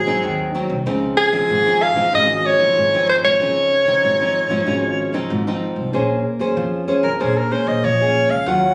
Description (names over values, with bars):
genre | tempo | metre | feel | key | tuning
samba and choro | 95 BPM | 4/4 | straight | Db major | A4 = 439 Hz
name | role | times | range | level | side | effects
warm soprano saxophone | melody | 0.0-8.7 s | Ab4 to Gb5 | -18 LUFS | equal | none
nylon-string guitar | accompaniment | 0.0-8.7 s | Ab2 to C5 | -24 LUFS | equal | none
upright bass | bass | 0.1-8.7 s | Ab1 to Db3 | -28 LUFS | equal | none
room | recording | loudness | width
moderate studio ambience, RT60 0.5 s | recorded on a phone in the room, studio reverb | -18 LUFS | mono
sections
0.0-5.9 A section; 5.9-8.7 B section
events
soprano saxophone solo 5.9-8.7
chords
0.0 Ab7; 0.9 Dbmaj9; 5.9 Bbm9